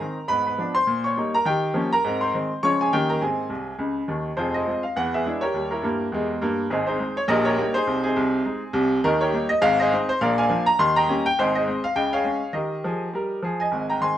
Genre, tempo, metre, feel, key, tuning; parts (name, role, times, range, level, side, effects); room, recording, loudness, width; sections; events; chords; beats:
jazz, stride piano; 206 BPM; 4/4; swing 58% on 8ths; Ab major; A4 = 441 Hz
bright upright piano; solo; 0.0-14.2 s; F1 to Db6; -20 LUFS; equal
moderate studio reverb, RT60 0.9 s; -20 LUFS; side -11 dB against mid
0.0-4.4 A section; 4.4-13.7 B section
upright piano fill 3.5-4.4
0.3 Abdim7; 0.9 Eb7/Bb; 1.5 Eb9; 2.0 Ab; 2.6 Db; 2.9 Eb7; 3.2 Ab; 4.4 Fm; 5.0 E7; 5.5 Eb; 6.7 Ab; 7.3 Eb7/Bb; 7.9 Ab/C; 9.0 Eb7; 9.6 Ab; 10.2 Bb7; 10.8 Eb7; 11.4 Ab; 12.0 Db; 12.5 Eb
0.29 0.58 | 0.87 1.16 1.45 1.74 | 2.04 2.33 2.62 2.91 | 3.20 3.50 3.79 4.08 | 4.37 4.66 4.96 5.25 | 5.54 5.83 6.12 6.41 | 6.71 7.00 7.29 7.58 | 7.87 8.16 8.46 8.75 | 9.04 9.33 9.62 9.91 | 10.21 10.50 10.79 11.08 | 11.37 11.67 11.96 12.25 | 12.54 12.83 13.13 13.42 | 13.71 14.00